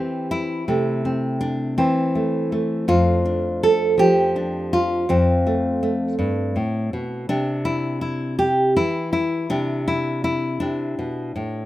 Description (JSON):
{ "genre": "folk, solo fingerstyle acoustic guitar", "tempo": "54 BPM (dotted quarters)", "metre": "6/8", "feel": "straight", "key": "C major", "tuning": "A4 = 440 Hz", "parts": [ { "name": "nylon-string guitar", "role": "solo", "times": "0.0-11.7 s", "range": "F2 to A4", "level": "-19 LUFS", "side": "equal", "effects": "none" } ], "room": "small room ambience", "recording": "rough home demo mix", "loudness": "-19 LUFS", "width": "side -15 dB against mid", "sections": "0.0-7.3 A section; 7.3-11.7 B section", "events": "none", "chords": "0.0 C6; 2.9 F6; 7.3 Cadd9" }